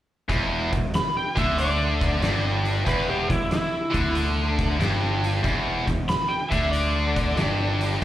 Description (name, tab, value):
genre	blues rock power trio and southern rock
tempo	93 BPM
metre	4/4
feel	swing 67% on 8ths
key	unclear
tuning	A4 = 440 Hz
part	tight distorted guitar	riff	0.3-8.0 s	E2 to D3	-26 LUFS	equal	distortion, slapback echo
part	fuzz picked electric bass	bass	0.3-8.0 s	E1 to D2	-26 LUFS	equal	overdrive
part	oversized low-tuned drum kit	drums	0.3-8.0 s	hi-hat, kick drum, snare drum	-28 LUFS	equal	none
part	overdriven slide guitar	melody	1.0-8.0 s	E4 to B5	-27 LUFS	equal	slapback echo
room	light reverb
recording	live gig heard through the venue's PA, club reverb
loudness	-21 LUFS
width	side -13 dB against mid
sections	0.3-8.0 A section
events	none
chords	0.3 Em7